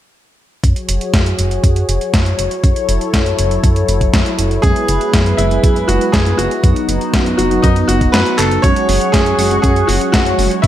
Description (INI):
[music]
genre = italo disco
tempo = 120 BPM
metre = 4/4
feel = straight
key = F# minor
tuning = A4 = 439 Hz
[part]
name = warm analog pad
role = sustained chords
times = 0.6-10.7 s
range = F#3 to C#6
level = -19 LUFS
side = left 1 dB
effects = chorus
[part]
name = chorused synth bass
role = bass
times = 0.6-10.7 s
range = F#1 to F#2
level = -17 LUFS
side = equal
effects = tube saturation
[part]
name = dusty soul sampler-style drum kit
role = drums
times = 0.6-10.7 s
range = handclaps, hi-hat, snare drum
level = -19 LUFS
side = equal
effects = overdrive, small room ambience, gated reverb
[part]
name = electronic kick drum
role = drums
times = 0.6-10.7 s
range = none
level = -14 LUFS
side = equal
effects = small room ambience
[part]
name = bright grand piano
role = melody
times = 4.6-10.7 s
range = D#4 to C#5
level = -18 LUFS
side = equal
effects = digital delay
[part]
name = mellow synth brass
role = stabs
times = 4.6-10.7 s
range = E3 to G#4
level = -20 LUFS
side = right 1 dB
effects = chorus
[sound]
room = light reverb, digital ambience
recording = none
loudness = -11 LUFS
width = side -12 dB against mid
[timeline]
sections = 0.6-8.6 A section; 8.6-10.7 B section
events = filter sweep on analog synth bass 0.6-8.6; kick drops out 8.1-8.6; drum fill 8.4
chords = 0.6 F#sus2; 2.6 A/F#; 4.6 E/F#; 6.6 B/F#; 8.6 F#sus2